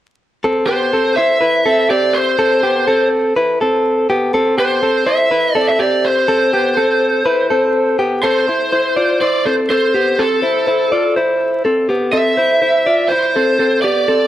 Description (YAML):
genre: indie pop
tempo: 123 BPM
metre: 4/4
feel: straight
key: C major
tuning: A4 = 440 Hz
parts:
  - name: direct-recorded clean electric guitar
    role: arpeggios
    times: 0.4-14.3 s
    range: B3 to D5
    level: -15 LUFS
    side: equal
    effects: plate reverb
  - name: lead guitar through a small cranked amp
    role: melody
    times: 0.7-14.3 s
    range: A4 to E5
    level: -15 LUFS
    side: equal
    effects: overdrive, plate reverb
room: moderate studio reverb, RT60 0.5 s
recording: vinyl crackle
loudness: -12 LUFS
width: side -12 dB against mid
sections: 0.4-8.2 A section; 8.2-14.3 B section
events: none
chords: 0.4 C6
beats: | 0.43 0.92 1.40 1.89 | 2.38 2.87 3.35 3.84 | 4.33 4.82 5.31 5.79 | 6.28 6.77 7.25 7.74 | 8.23 8.72 9.21 9.69 | 10.18 10.67 11.15 11.64 | 12.13 12.62 13.10 13.59 | 14.08